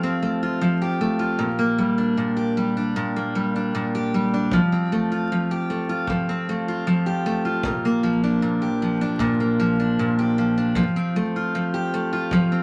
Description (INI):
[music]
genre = acoustic pop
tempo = 77 BPM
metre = 4/4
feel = straight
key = F major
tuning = A4 = 440 Hz
[part]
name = picked steel-string acoustic guitar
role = accompaniment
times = 0.0-12.6 s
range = Bb2 to G4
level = -22 LUFS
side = equal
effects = none
[part]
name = kick drum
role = drums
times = 4.5-12.5 s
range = none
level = -36 LUFS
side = equal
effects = none
[sound]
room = moderate studio reverb, RT60 0.7 s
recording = vinyl crackle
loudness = -23 LUFS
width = mono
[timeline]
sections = 0.0-12.6 A section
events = none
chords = 0.0 Fadd9; 1.4 Bb6; 4.5 Fadd9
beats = 0.61 | 1.39 2.17 2.95 3.73 | 4.51 5.29 6.07 6.85 | 7.63 8.41 9.19 9.97 | 10.75 11.53 12.31